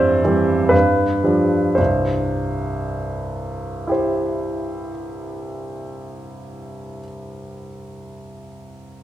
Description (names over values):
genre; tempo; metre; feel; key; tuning
classical, romantic character piece for solo piano; 54-70 BPM; 3/4; rubato; C major; A4 = 443 Hz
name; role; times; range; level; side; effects
clear concert grand piano; solo; 0.0-9.0 s; C2 to E5; -19 LUFS; right 1 dB; none
room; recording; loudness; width
wet recital hall reverb, RT60 1.4 s; none; -17 LUFS; side -12 dB against mid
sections
0.0-1.8 A section; 1.8-8.0 B section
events
slowing down 0.0-1.8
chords
0.0 C/G; 0.7 G7; 1.8 C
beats
0.72 | 1.78 2.82 3.87 | 4.94 5.96 6.97